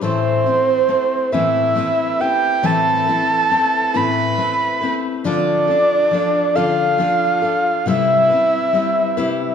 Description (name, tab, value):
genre	acoustic folk duo or small band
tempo	46 BPM (dotted quarters)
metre	6/8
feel	straight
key	unclear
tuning	A4 = 440 Hz
part	breathy flute-like synth lead	melody	0.0-9.5 s	C5 to B5	-16 LUFS	right 2 dB	chorus
part	picked steel-string acoustic guitar	accompaniment	0.0-9.5 s	A2 to B4	-20 LUFS	left 5 dB	none
room	wet recital hall reverb, RT60 1.5 s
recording	none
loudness	-15 LUFS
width	side -7 dB against mid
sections	0.0-9.5 A section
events	none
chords	0.0 Amadd9; 5.3 Dm; 7.9 Cmaj7